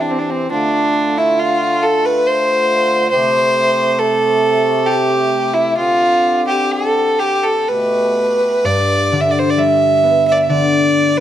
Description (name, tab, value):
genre	celtic folk, Celtic slow air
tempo	62-71 BPM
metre	3/4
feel	rubato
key	unclear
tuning	A4 = 440 Hz
part	rich fiddle	melody	0.0-11.2 s	C4 to E5	-13 LUFS	right 1 dB	none
part	hand-pumped harmonium	sustained chords	0.0-8.6 s	B2 to G4	-21 LUFS	equal	none
part	concert harp	accompaniment	8.6-11.2 s	G2 to B3	-16 LUFS	left 4 dB	none
room	moderate recital hall reverb, RT60 1.8 s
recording	none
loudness	-12 LUFS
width	side -11 dB against mid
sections	0.0-11.2 A section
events	none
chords	0.5 Dm; 3.1 Am7; 5.8 Gsus4; 7.7 Gadd9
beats	| 0.49 1.38 2.25 | 3.10 3.97 4.85 | 5.76 6.71 7.67 | 8.63 9.57 10.48